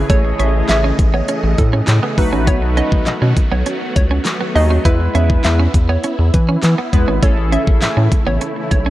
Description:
dance-pop; 101 BPM; 4/4; straight; A4 = 440 Hz
filtered supersaw swell; sustained chords; 0.0-8.9 s; C#3 to D#5; -24 LUFS; equal; sidechain pumping
clean electric guitar; riff; 0.0-8.9 s; A3 to E4; -24 LUFS; right 5 dB; wide subtle chorus
round analog bass; bass; 0.0-8.9 s; G#1 to E3; -16 LUFS; equal; sidechain pumping
hollow square pluck; melody; 0.1-8.8 s; A4 to E5; -23 LUFS; equal; chorus, sidechain pumping
chorused polysynth; accompaniment; 0.1-8.0 s; G#3 to C#5; -22 LUFS; left 1 dB; sidechain pumping
pop drum kit; drums; 0.1-8.9 s; handclaps, hi-hat, kick drum, snare drum; -16 LUFS; equal
light reverb, digital ambience; worn, warbling old tape, cassette tape, warbly pitch drift; -13 LUFS; side -15 dB against mid
0.0-8.9 A section
0.0 Amaj7; 2.2 B7; 4.9 E; 7.2 Amaj7
| 0.10 0.69 1.29 1.88 | 2.47 3.07 3.66 4.26 | 4.85 5.45 6.04 6.63 | 7.23 7.82 8.41

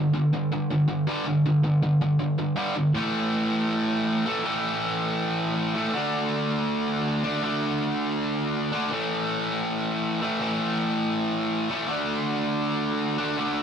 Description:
punk; 161 BPM; 4/4; straight; A4 = 442 Hz
distorted electric guitar; solo; 0.0-13.6 s; G2 to D4; -23 LUFS; equal; overdrive
moderate studio reverb, RT60 0.6 s; rough rehearsal-room recording; -23 LUFS; side -7 dB against mid
0.0-3.0 A section; 3.0-13.6 B section
0.0 G5; 3.0 A5; 5.9 D5; 8.9 A5; 11.9 D5
0.34 0.71 1.08 | 1.46 1.83 2.21 2.58 | 2.96 3.33 3.70 4.08 | 4.45 4.82 5.20 5.57 | 5.94 6.31 6.69 7.06 | 7.43 7.80 8.18 8.55 | 8.92 9.29 9.66 10.04 | 10.41 10.78 11.15 11.52 | 11.89 12.26 12.63 13.01 | 13.38

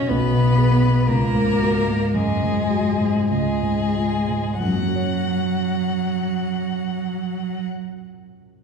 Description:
classical, slow romantic movement for piano trio; 44-64 BPM; 3/4; rubato; F# major; A4 = 440 Hz
rich violin; melody; 0.0-7.7 s; G#4 to F#5; -27 LUFS; left 5 dB
rich cello; second line; 0.0-7.6 s; F#3 to C#4; -24 LUFS; right 3 dB
dark concert grand piano; accompaniment; 0.0-8.6 s; B1 to C#5; -21 LUFS; left 1 dB
wet recital hall reverb, RT60 1.8 s; heard from further back in the room; -18 LUFS; side -6 dB against mid
0.0-4.6 A section; 4.6-8.5 B section
slowing down 0.0-4.6
0.1 G#m/B; 1.1 C#sus4; 3.3 C#; 4.6 F#
0.10 | 1.08 2.14 3.29 | 4.61 5.92 7.23

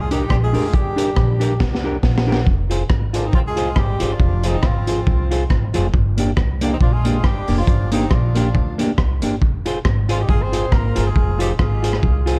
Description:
ska; 138 BPM; 4/4; swing 56% on 8ths; F dorian; A4 = 441 Hz
mellow horn section; melody; 0.0-12.2 s; D3 to C5; -28 LUFS; equal; analog delay
upright bass; bass; 0.0-12.4 s; F1 to D2; -23 LUFS; equal
semi-hollow electric guitar; accompaniment; 0.1-12.4 s; Bb3 to C5; -26 LUFS; equal
crunchy breakbeat drum kit; drums; 0.1-12.4 s; hi-hat, kick drum, rim click, snare drum; -22 LUFS; equal
studio ambience; dark, warm production, faint mains hum; -18 LUFS; mono
0.0-12.4 A section
drum fill 1.6-2.5
0.0 Gm; 2.5 Fm; 5.9 Gm; 9.4 Fm
0.30 | 0.73 1.17 1.60 2.03 | 2.47 2.90 3.33 3.77 | 4.20 4.63 5.07 5.50 | 5.94 6.37 6.81 7.24 | 7.68 8.11 8.55 8.98 | 9.42 9.85 10.29 10.72 | 11.16 11.59 12.03

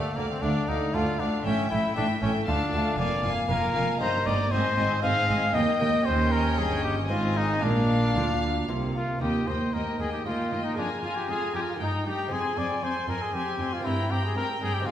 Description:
classical, baroque-style concerto movement with solo episodes; 117 BPM; 3/4; straight; Eb major; A4 = 440 Hz
clear trumpet; melody; 0.0-14.9 s; A3 to F5; -29 LUFS; left 2 dB
rich chamber violin section; melody; 0.0-14.9 s; F5 to C6; -36 LUFS; left 4 dB
rich chamber violin section; second line; 0.0-14.9 s; D5 to Ab5; -33 LUFS; left 3 dB
lute; accompaniment; 0.0-14.9 s; D2 to Ab4; -37 LUFS; right 1 dB
warm chamber viola section; accompaniment; 0.0-14.9 s; A3 to F4; -33 LUFS; right 2 dB
rich chamber double bass section; bass; 0.2-9.2 s; F1 to Eb2; -31 LUFS; right 2 dB
warm chamber cello section; bass; 0.2-14.9 s; D2 to D3; -30 LUFS; right 1 dB
wet recital hall reverb, RT60 1.5 s; heard from further back in the room; -24 LUFS; side -10 dB against mid
0.0-9.2 A section; 9.2-14.9 A section
0.0 Dm; 1.5 A5; 2.5 Dm; 3.0 Bb5/F; 4.0 Eb/G; 4.5 Ab; 5.5 Eb; 6.1 Eb7; 7.1 Ab; 7.6 Bb; 9.2 Eb; 10.8 Bb5/F; 11.8 Eb/G; 12.3 Fm; 13.8 C5/G
0.43 0.94 | 1.45 1.97 2.48 | 2.99 3.50 4.01 | 4.52 5.04 5.55 | 6.06 6.58 7.10 | 7.63 8.16 8.69 | 9.22 9.74 10.26 | 10.77 11.29 11.80 | 12.31 12.83 13.34 | 13.85 14.36 14.87

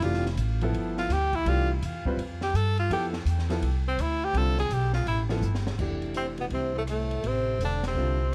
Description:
modal jazz; 166 BPM; 4/4; swing 64% on 8ths; F lydian; A4 = 440 Hz
breathy tenor saxophone; melody; 0.0-8.3 s; A3 to A4; -32 LUFS; equal; plate reverb, analog delay
warm concert grand piano; accompaniment; 0.0-8.2 s; D3 to B4; -35 LUFS; equal; plate reverb
upright bass; bass; 0.0-8.3 s; E1 to G2; -30 LUFS; equal
open jazz drum kit; drums; 0.0-8.3 s; crash cymbal, hi-hat, kick drum, ride cymbal, rim click, snare drum; -41 LUFS; equal
breathy trombone; second line; 6.2-8.3 s; A2 to D3; -37 LUFS; equal
light reverb; vinyl crackle; -27 LUFS; mono
0.0-5.8 A section; 5.8-8.3 B section
tenor saxophone solo 0.0-5.8; drum fill 5.4-5.8; band accent 7.8
0.0 Fmaj9; 2.9 Cadd9; 5.8 Fmaj9
| 0.02 0.38 0.74 1.10 | 1.46 1.82 2.18 2.54 | 2.90 3.26 3.62 3.98 | 4.34 4.70 5.06 5.42 | 5.78 6.14 6.51 6.87 | 7.23 7.59 7.95 8.32

